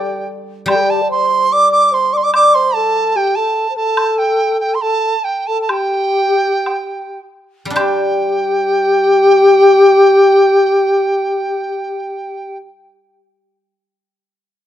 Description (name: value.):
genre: chinese traditional, Chinese chamber ensemble.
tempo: 50-74 BPM.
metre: 2/4.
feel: straight.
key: unclear.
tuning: A4 = 440 Hz.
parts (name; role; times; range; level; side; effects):
bright reedy large dizi; melody; 0.0-12.6 s; G5 to D6; -15 LUFS; right 3 dB; none.
mellow low xiao; second line; 0.0-12.6 s; G4 to D5; -14 LUFS; left 2 dB; none.
guzheng; accompaniment; 0.0-3.1, 7.7-13.7 s; G3 to D5; -22 LUFS; left 1 dB; none.
woodblock; percussion; 0.7-8.3 s; none; -22 LUFS; equal; none.
room: light reverb.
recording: close, detailed microphones.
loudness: -11 LUFS.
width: side -11 dB against mid.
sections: 0.0-7.8 A section; 7.8-12.5 B section.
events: slowing down 4.0-7.8.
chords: none.